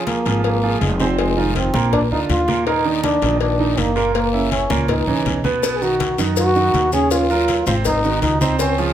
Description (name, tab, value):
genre	latin, salsa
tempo	162 BPM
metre	4/4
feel	straight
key	unclear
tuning	A4 = 441 Hz
part	mellow trombone	melody	0.0-8.9 s	Ab3 to Ab4	-20 LUFS	equal	none
part	clear baby grand piano	accompaniment	0.0-8.9 s	Bb2 to Db5	-21 LUFS	right 6 dB	none
part	congas	percussion	0.1-8.9 s	none	-26 LUFS	left 2 dB	none
part	cowbell	percussion	0.1-8.8 s	none	-26 LUFS	left 10 dB	none
part	guiro	percussion	0.1-8.9 s	none	-31 LUFS	left 8 dB	none
part	upright bass	bass	0.3-8.9 s	F1 to F#2	-22 LUFS	left 1 dB	none
part	maracas	percussion	5.6-8.9 s	none	-31 LUFS	left 6 dB	none
room	moderate large studio reverb, RT60 0.9 s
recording	none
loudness	-15 LUFS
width	side -10 dB against mid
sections	0.0-8.9 A section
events	none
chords	0.0 Db6 (rootless); 1.2 Fm7; 1.9 Bb; 2.7 Eb5; 4.1 Gb6; 5.6 B; 7.1 Ebm9; 7.9 Ab7